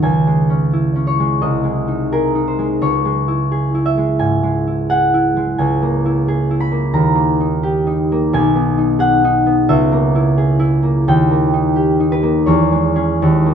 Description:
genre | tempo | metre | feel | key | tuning
classical, solo harp piece | 87 BPM | 4/4 | rubato | unclear | A4 = 440 Hz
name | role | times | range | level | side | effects
concert harp | solo | 0.0-13.5 s | B1 to B5 | -13 LUFS | equal | none
room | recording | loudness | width
little or no reverb | close, detailed microphones | -13 LUFS | side -8 dB against mid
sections
0.0-13.5 A section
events
none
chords
0.0 C#m; 1.4 G#/B#; 2.8 C#m; 5.6 A#m7b5/C#; 6.9 D#; 8.3 G#m/B; 9.7 A#m7b5/C#; 11.1 D#; 12.5 C#m/E

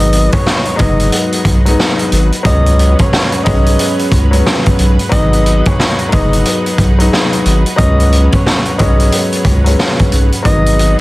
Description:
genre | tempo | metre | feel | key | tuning
hip hop, boom-bap hip-hop | 90 BPM | 4/4 | swing 62% on 16ths | G# minor | A4 = 439 Hz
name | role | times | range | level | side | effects
breathy tenor saxophone | melody | 0.0-11.0 s | C#5 to D#5 | -19 LUFS | equal | high-pass filter, low-pass filter
warm baby grand piano | accompaniment | 0.0-11.0 s | F#3 to D#4 | -16 LUFS | left 2 dB | high-pass filter, low-pass filter
lush unison pad | sustained chords | 0.0-11.0 s | G#3 to B4 | -24 LUFS | right 2 dB | chorus, high-pass filter, low-pass filter
saturated sub bass | bass | 0.0-11.0 s | F#1 to C#2 | -11 LUFS | equal | none
raw garage drum kit | drums | 0.0-11.0 s | hi-hat, kick drum, snare drum | -13 LUFS | equal | none
room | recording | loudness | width
small room ambience | dense, heavily limited modern master, vinyl crackle | -9 LUFS | side -19 dB against mid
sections
0.0-11.0 A section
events
none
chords
0.0 G#m7; 2.5 C#7sus4; 5.1 G#m7; 7.8 C#7sus4; 10.5 G#m7

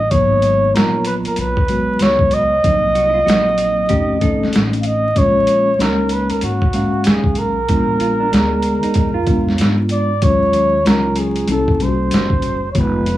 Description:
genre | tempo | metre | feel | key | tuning
hip hop, jazz-hop | 95 BPM | 4/4 | swing 61% on 16ths | unclear | A4 = 437 Hz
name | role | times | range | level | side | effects
mellow flugelhorn | melody | 0.0-13.2 s | Gb4 to F5 | -17 LUFS | equal | analog delay
upright bass | bass | 0.0-13.2 s | F1 to Ab2 | -23 LUFS | equal | none
mellow tine electric piano | accompaniment | 0.1-13.2 s | Gb3 to F5 | -19 LUFS | left 1 dB | medium stereo tremolo
trip hop sampler-style drum kit | drums | 0.1-13.2 s | hi-hat, kick drum, snare drum | -18 LUFS | equal | none
mellow electric guitar | second line | 3.0-9.7 s | D4 to A4 | -26 LUFS | right 5 dB | none
room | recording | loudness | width
moderate studio reverb, RT60 0.5 s | vinyl crackle | -13 LUFS | side -14 dB against mid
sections
0.0-13.2 A section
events
none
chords
0.1 Abm9; 2.6 Cm7b5; 3.9 F7b13; 5.2 Bbm7; 7.7 Bb7b9; 10.2 Ebm11; 11.5 C7b9

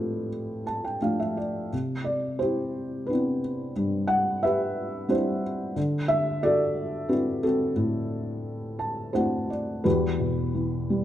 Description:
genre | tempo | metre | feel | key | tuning
classical, lyrical solo piano | 88 BPM | 3/4 | rubato | unclear | A4 = 442 Hz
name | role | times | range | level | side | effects
felt-muted upright piano | solo | 0.0-11.0 s | E2 to A5 | -24 LUFS | equal | none
room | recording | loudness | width
moderate recital hall reverb, RT60 1.7 s | dark, warm production | -24 LUFS | side -12 dB against mid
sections
0.0-9.8 A section; 9.8-11.0 B section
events
felt piano fill 0.3-1.7, 8.4-9.8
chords
0.0 F6/A; 1.7 Cmaj9; 5.8 D13; 9.8 Emadd9

